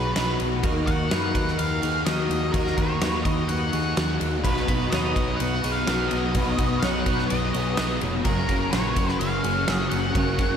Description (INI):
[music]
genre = rock, shoegaze and dream pop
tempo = 126 BPM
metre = 4/4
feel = straight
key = B major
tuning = A4 = 440 Hz
[part]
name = octave-fuzz lead guitar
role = melody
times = 0.0-10.6 s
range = A#4 to F#5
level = -29 LUFS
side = equal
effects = distortion, ping-pong delay
[part]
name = picked twelve-string acoustic guitar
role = arpeggios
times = 0.0-10.6 s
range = F#4 to C#5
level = -32 LUFS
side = left 3 dB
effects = ensemble chorus, ping-pong delay
[part]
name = overdriven semi-hollow guitar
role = riff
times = 0.0-10.6 s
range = F#2 to F#4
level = -30 LUFS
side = right 6 dB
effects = reverse reverb
[part]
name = thick fuzz guitar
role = riff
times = 0.0-10.6 s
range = F#2 to D#4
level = -30 LUFS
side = left 7 dB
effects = distortion, ensemble chorus
[part]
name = growling picked electric bass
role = bass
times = 0.0-10.6 s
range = E#1 to F#2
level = -29 LUFS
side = equal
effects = overdrive
[part]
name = huge arena drum kit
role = drums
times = 0.2-10.5 s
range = kick drum, ride cymbal, snare drum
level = -27 LUFS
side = equal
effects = none
[part]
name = overdriven semi-hollow guitar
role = riff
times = 4.5-10.6 s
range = F#2 to B3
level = -30 LUFS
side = equal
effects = ensemble chorus
[sound]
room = wet lush hall reverb, RT60 1.9 s, small room ambience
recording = dreamy mix soaked in reverb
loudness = -21 LUFS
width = side -8 dB against mid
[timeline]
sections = 0.0-10.6 A section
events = none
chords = 0.0 B; 0.6 D#m; 4.4 B; 8.3 F#